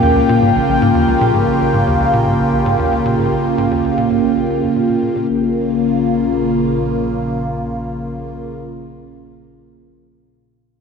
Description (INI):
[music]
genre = ambient, sequencer-driven space music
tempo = 114 BPM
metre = 4/4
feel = straight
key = Bb dorian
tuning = A4 = 440 Hz
[part]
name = phased analog pad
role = sustained chords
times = 0.0-8.5 s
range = Db3 to F4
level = -15 LUFS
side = equal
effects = phaser, chorus
[part]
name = tight sequencer bass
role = riff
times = 0.0-5.5 s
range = Bb1 to Bb2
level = -20 LUFS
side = left 1 dB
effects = wide subtle chorus, cassette tape, tape echo
[part]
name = analog drone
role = bass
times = 0.0-6.8 s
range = Bb1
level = -30 LUFS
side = left 1 dB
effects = chorus
[part]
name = bubbling stepped-filter texture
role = texture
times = 0.0-5.3 s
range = G4 to G5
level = -21 LUFS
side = equal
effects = chorus, built-in reverb
[sound]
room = wet plate reverb, RT60 2.9 s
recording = none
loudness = -13 LUFS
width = side -6 dB against mid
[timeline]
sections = 0.0-5.3 A section; 5.3-9.5 B section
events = fade-out on analog synth bass 0.0-5.3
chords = 0.0 Bbm